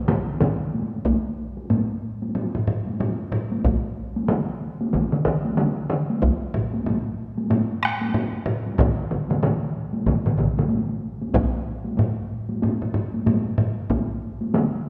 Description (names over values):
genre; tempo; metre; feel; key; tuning
japanese traditional, taiko drum ensemble; 93 BPM; 4/4; swing 60% on 16ths; none; none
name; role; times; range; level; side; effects
taiko ensemble; percussion; 0.1-14.7 s; none; -28 LUFS; equal; none
taiko ensemble; percussion; 0.1-13.8 s; none; -28 LUFS; equal; none
taiko ensemble; percussion; 0.1-14.7 s; none; -27 LUFS; equal; none
taiko ensemble; percussion; 1.1-14.1 s; none; -28 LUFS; equal; none
room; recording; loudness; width
wet concert hall reverb, RT60 2.0 s; none; -24 LUFS; mono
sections
0.0-1.1 A section; 1.1-14.9 B section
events
none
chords
none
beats
0.41 | 1.05 1.70 2.35 2.99 | 3.64 4.28 4.93 5.57 | 6.22 6.86 7.50 8.14 | 8.79 9.43 10.07 10.71 | 11.35 11.99 12.62 13.26 | 13.90 14.54